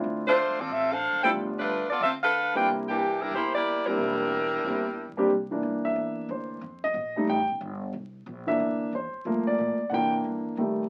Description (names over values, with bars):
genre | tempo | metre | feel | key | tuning
jazz, big band swing | 182 BPM | 4/4 | swing 61% on 8ths | C mixolydian | A4 = 441 Hz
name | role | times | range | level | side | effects
warm baby grand piano | accompaniment | 0.0-10.8 s | D3 to G5 | -29 LUFS | equal | none
upright bass | bass | 0.0-10.9 s | Eb1 to C3 | -45 LUFS | equal | none
warm saxophone section | melody | 0.3-5.2 s | E3 to G5 | -27 LUFS | equal | none
room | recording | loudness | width
wet studio reverb, RT60 0.5 s | very old 78 rpm record, vinyl crackle | -27 LUFS | mono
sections
0.0-5.3 A section; 5.3-10.9 B section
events
grand piano solo 5.3-10.9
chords
0.0 Dm7; 1.4 G9; 2.7 C9; 6.6 F9; 7.9 C9; 9.3 Gm7; 9.9 C9